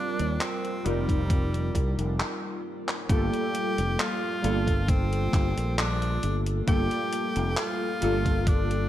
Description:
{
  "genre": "vaporwave",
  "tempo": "67 BPM",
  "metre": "4/4",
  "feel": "straight",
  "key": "G minor",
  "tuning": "A4 = 440 Hz",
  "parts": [
    { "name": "edgy tenor saxophone", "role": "melody", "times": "0.0-8.9 s", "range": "G3 to G4", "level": "-32 LUFS", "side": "left 1 dB", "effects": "tape echo" },
    { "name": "warbly lo-fi synth keys", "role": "accompaniment", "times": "0.0-8.9 s", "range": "G3 to Bb4", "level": "-30 LUFS", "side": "equal", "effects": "lush chorus" },
    { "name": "fingered electric bass", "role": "bass", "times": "0.2-8.9 s", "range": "F1 to Eb2", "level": "-27 LUFS", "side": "equal", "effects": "none" },
    { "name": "detuned 8-bit digital drum machine", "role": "drums", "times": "0.2-8.9 s", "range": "handclaps, hi-hat", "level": "-33 LUFS", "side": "equal", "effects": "small room ambience, gated reverb" },
    { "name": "electronic kick drum", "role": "drums", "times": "1.1-8.7 s", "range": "none", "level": "-25 LUFS", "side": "equal", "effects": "small room ambience" }
  ],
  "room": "little or no reverb",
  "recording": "none",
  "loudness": "-24 LUFS",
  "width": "side -12 dB against mid",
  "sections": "0.0-3.1 A section; 3.1-8.9 B section",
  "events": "drum fill 2.2-3.1; stop 2.2-3.1",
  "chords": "0.0 F9sus4; 3.1 Gm9",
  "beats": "0.41 1.30 2.20 | 3.10 3.99 4.89 5.78 | 6.68 7.57 8.47"
}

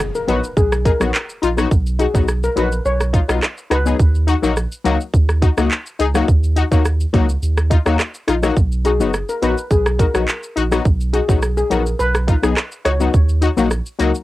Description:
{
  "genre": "dancehall",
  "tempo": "105 BPM",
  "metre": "4/4",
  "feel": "straight",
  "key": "unclear",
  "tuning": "A4 = 440 Hz",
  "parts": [
    { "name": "saturated sub bass", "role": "bass", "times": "0.0-14.1 s", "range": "F#1 to Eb2", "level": "-18 LUFS", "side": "right 1 dB", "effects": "none" },
    { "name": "island pop drum kit", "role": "drums", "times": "0.0-14.2 s", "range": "handclaps, hi-hat, kick drum, rim click, shaker", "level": "-17 LUFS", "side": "right 1 dB", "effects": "cassette tape" },
    { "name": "impact", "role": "sound effects", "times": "0.0-1.7 s", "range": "none", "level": "-35 LUFS", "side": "right 1 dB", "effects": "none" },
    { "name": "steel pan", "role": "melody", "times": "0.2-3.8, 8.9-12.9 s", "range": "Ab4 to Db5", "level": "-22 LUFS", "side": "left 1 dB", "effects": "cassette tape, tape echo" },
    { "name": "synth brass stab", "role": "accompaniment", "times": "0.3-14.1 s", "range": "F#3 to Ab4", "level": "-19 LUFS", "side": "left 5 dB", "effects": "chorus, sidechain pumping, cassette tape" }
  ],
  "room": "light reverb",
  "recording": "home recording on cassette",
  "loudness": "-15 LUFS",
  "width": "side -16 dB against mid",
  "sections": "0.0-14.2 A section",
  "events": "impact 0.0-1.7",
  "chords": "0.0 B; 4.0 Ebm; 8.6 B; 13.1 Ebm",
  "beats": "0.00 0.57 1.14 | 1.71 2.28 2.85 3.42 | 4.00 4.57 5.14 5.71 | 6.28 6.85 7.42 8.00 | 8.57 9.14 9.71 10.28 | 10.85 11.43 12.00 12.57 | 13.14 13.71"
}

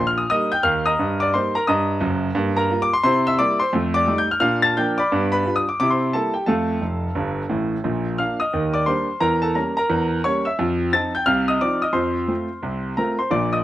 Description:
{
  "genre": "jazz, stride piano",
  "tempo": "175 BPM",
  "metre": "4/4",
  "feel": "swing 63% on 8ths",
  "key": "unclear",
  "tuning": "A4 = 440 Hz",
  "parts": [
    { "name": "warm concert grand piano", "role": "solo", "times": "0.0-13.6 s", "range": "F1 to A6", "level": "-18 LUFS", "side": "equal", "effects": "none" }
  ],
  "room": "little or no reverb",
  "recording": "recorded outdoors, with no room sound",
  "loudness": "-18 LUFS",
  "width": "side -14 dB against mid",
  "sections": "0.0-7.8 A section; 7.8-13.6 B section",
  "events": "grand piano fill 6.8-7.8",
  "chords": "0.0 Eb; 1.0 Eb/G; 2.4 Gm7; 3.0 C7; 3.7 F13; 4.4 Bb; 5.1 G7; 5.8 C7; 6.5 F; 7.8 Bb; 8.5 Ebmaj7; 9.2 Edim7; 10.6 F7; 12.0 F",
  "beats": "0.31 0.65 | 0.99 1.33 1.68 2.02 | 2.36 2.70 3.05 3.39 | 3.73 4.07 4.42 4.76 | 5.10 5.44 5.79 6.13 | 6.47 6.81 7.16 7.50 | 7.84 8.19 8.53 8.87 | 9.21 9.56 9.90 10.24 | 10.59 10.93 11.27 11.61 | 11.96 12.30 12.64 12.98 | 13.32"
}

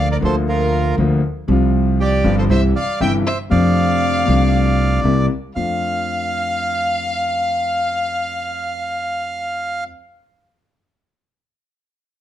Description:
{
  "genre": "tango",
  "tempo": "118 BPM",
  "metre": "4/4",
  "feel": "rubato",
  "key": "F major",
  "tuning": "A4 = 441 Hz",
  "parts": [
    { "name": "bandoneon", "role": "melody", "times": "0.0-9.8 s", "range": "F4 to G5", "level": "-22 LUFS", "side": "right 2 dB", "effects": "none" },
    { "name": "warm violin", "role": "second line", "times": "0.0-9.8 s", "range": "Bb4 to G5", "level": "-25 LUFS", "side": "left 4 dB", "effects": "none" },
    { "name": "warm concert grand piano", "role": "accompaniment", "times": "0.0-9.8 s", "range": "G1 to F4", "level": "-20 LUFS", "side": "left 4 dB", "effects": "none" },
    { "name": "upright bass", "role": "bass", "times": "0.0-5.8 s", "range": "G1 to F2", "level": "-18 LUFS", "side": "right 2 dB", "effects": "none" }
  ],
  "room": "light reverb",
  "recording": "dark, warm production",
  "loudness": "-16 LUFS",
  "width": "side -11 dB against mid",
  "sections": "0.0-5.6 A section; 5.6-9.6 B section",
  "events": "none",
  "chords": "0.0 Bb/D; 1.5 Csus4; 2.5 C; 3.5 F6; 5.0 C7; 5.6 F6",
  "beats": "0.48 0.98 | 1.49 2.00 2.50 3.01 | 3.52 4.03 4.54 5.05 | 5.56 6.07 6.58 7.08 | 7.58 8.09 8.59 9.10"
}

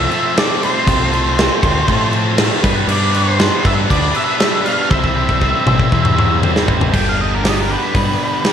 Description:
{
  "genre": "classic rock",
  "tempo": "119 BPM",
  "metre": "4/4",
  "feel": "straight",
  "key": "unclear",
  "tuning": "A4 = 439 Hz",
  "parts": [
    { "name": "octave-fuzz lead guitar", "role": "melody", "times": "0.0-8.5 s", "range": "Bb4 to G5", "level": "-20 LUFS", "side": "equal", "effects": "distortion, slapback echo" },
    { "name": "cranked stack guitar", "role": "riff", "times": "0.0-8.5 s", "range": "G2 to C5", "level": "-18 LUFS", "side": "equal", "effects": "overdrive, slapback echo" },
    { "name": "growling fingered electric bass", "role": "bass", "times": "0.0-8.2 s", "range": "G1 to A2", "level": "-19 LUFS", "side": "equal", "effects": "overdrive" },
    { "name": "big rock drum kit", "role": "drums", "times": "0.1-8.5 s", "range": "crash cymbal, hi-hat, kick drum, snare drum, toms", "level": "-16 LUFS", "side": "equal", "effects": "none" }
  ],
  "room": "moderate recital hall reverb, RT60 1.2 s, small room reverb",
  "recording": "big arena sound",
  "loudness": "-12 LUFS",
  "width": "side -8 dB against mid",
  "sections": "0.0-6.9 A section; 6.9-8.5 B section",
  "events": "drum fill 4.9-6.9; lead electric guitar solo 6.9-8.5",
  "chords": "0.0 F; 2.6 G; 4.9 C; 6.9 G",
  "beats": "0.37 | 0.88 1.38 1.89 2.39 | 2.90 3.40 3.91 4.41 | 4.92 5.42 5.92 6.43 | 6.94 7.44 7.95 8.46"
}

